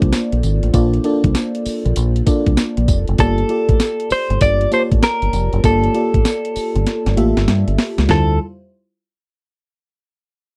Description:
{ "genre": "R&B, new jack swing", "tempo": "98 BPM", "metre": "4/4", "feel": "swing 64% on 16ths", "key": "D minor", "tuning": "A4 = 440 Hz", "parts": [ { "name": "FM electric piano with soft pad layer", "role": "accompaniment", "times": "0.0-8.4 s", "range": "G3 to A5", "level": "-23 LUFS", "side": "equal", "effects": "chorus" }, { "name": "deep dub fingered electric bass", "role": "bass", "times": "0.0-8.4 s", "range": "F1 to G2", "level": "-19 LUFS", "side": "equal", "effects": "none" }, { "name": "clean 12-bit digital drum machine", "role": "drums", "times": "0.0-8.3 s", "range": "hi-hat, kick drum, snare drum, tambourine, toms", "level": "-20 LUFS", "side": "equal", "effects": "none" }, { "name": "direct-recorded clean electric guitar", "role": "melody", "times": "3.2-8.4 s", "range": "A4 to D5", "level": "-21 LUFS", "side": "equal", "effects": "subtle chorus" } ], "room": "little or no reverb", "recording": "dry, close 1970s-style studio recording", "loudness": "-16 LUFS", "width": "mono", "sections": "0.0-8.1 A section; 8.1-10.5 B section", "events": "drum fill 6.9-8.1", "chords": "0.0 Bbmaj7; 3.2 Gm9; 8.1 Dm11" }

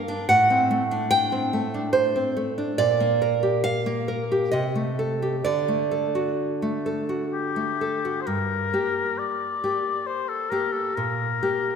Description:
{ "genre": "romantic duo for oboe and classical guitar", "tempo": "62-73 BPM", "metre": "3/4", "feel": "rubato", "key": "G minor", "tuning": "A4 = 440 Hz", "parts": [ { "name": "nylon-string guitar", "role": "accompaniment", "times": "0.0-11.8 s", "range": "G2 to G5", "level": "-22 LUFS", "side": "right 1 dB", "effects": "none" }, { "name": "warm oboe", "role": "melody", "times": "7.3-11.8 s", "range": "G4 to D5", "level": "-26 LUFS", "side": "left 6 dB", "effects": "none" } ], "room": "wet concert hall reverb, RT60 2.0 s", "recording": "recorded in a church or concert hall", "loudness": "-22 LUFS", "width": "side -6 dB against mid", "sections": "0.0-8.3 A section; 8.3-11.8 B section", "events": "none", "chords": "0.3 D7/A; 2.8 Gm/Bb; 4.5 Am7b5/C; 5.4 D; 8.3 Gm; 11.0 Gm/Bb" }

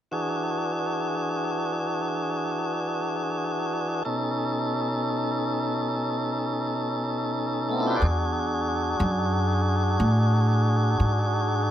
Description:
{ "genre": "slow blues", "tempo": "60 BPM (dotted quarters)", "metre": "12/8", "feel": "straight", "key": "E mixolydian", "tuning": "A4 = 443 Hz", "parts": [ { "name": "tonewheel organ", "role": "sustained chords", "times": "0.1-11.7 s", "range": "B2 to D5", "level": "-25 LUFS", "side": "equal", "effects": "overdrive, wide subtle chorus" }, { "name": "upright bass", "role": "bass", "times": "8.0-11.7 s", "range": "E2 to A2", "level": "-23 LUFS", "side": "equal", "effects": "none" } ], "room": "moderate studio reverb, RT60 0.6 s", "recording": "none", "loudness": "-23 LUFS", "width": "side -11 dB against mid", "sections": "0.1-8.0 A section; 8.0-11.7 B section", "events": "none", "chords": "0.1 E7; 4.1 B7; 8.0 E9" }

